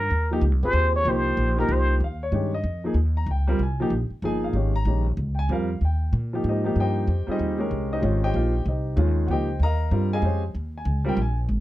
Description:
modal jazz; 190 BPM; 3/4; swing 63% on 8ths; Eb mixolydian; A4 = 440 Hz
trumpet with plunger mute; melody; 0.0-2.0 s; Bb4 to Db5; -24 LUFS; equal
upright bass; bass; 0.0-11.6 s; G1 to Bb2; -23 LUFS; equal
warm grand piano; accompaniment; 0.3-11.4 s; Eb3 to Bb5; -26 LUFS; equal
light reverb; dark, warm production; -21 LUFS; side -15 dB against mid
0.0-2.0 A section; 2.0-11.6 A section
muted trumpet solo 0.0-2.0
0.0 Eb9sus4

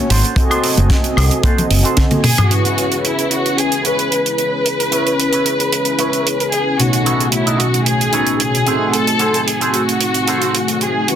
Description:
nu-disco, nu disco; 112 BPM; 4/4; straight; C# minor; A4 = 440 Hz
mellow synth brass; accompaniment; 0.0-11.2 s; B2 to G#5; -18 LUFS; equal; chorus
electric guitar with an envelope filter; riff; 0.1-11.0 s; D#4 to E5; -24 LUFS; right 3 dB; wide subtle chorus, low-pass filter
fingered electric bass with an envelope filter; bass; 0.1-1.8 s; F#1 to B#1; -13 LUFS; equal
tight funk drum kit; drums; 0.1-11.2 s; hi-hat, snare drum, toms, woodblock; -18 LUFS; right 2 dB
kick drum; drums; 0.4-2.1 s; -15 LUFS; equal; soft clipping on snare
congas; percussion; 0.8-2.2 s; -24 LUFS; left 1 dB
dark studio violin section; melody; 2.2-11.2 s; E4 to B4; -18 LUFS; left 1 dB; analog delay
moderate plate reverb, RT60 2.5 s; dense, heavily limited modern master; -13 LUFS; side -9 dB against mid
0.0-2.5 A section; 2.5-11.2 B section
drum fill 2.0-2.5; filter sweep on clean electric guitar 2.5-11.2
0.1 G#7b9; 2.5 C#m7; 6.8 B13; 8.7 G#7b9

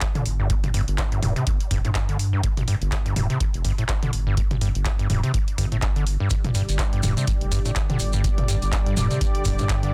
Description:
acid house; 124 BPM; 4/4; swing 57% on 16ths; A4 = 440 Hz
electro analog drum machine; drums; 0.0-9.9 s; handclaps, hi-hat, toms; -31 LUFS; equal; small room ambience
electronic kick drum; drums; 0.0-9.8 s; -27 LUFS; equal; small room ambience
overdriven acid bass; riff; 0.2-9.9 s; G1 to D3; -28 LUFS; equal; distortion, cassette tape, sidechain pumping
round analog bass; bass; 0.3-9.9 s; D1 to G2; -28 LUFS; equal; tube saturation, sidechain pumping
lush unison pad; sustained chords; 6.3-9.9 s; D3 to D5; -32 LUFS; equal; chorus, sidechain pumping
shekere; percussion; 6.3-9.8 s; -36 LUFS; equal
light reverb; dense, heavily limited modern master; -23 LUFS; mono
0.0-9.9 A section
0.0 G5

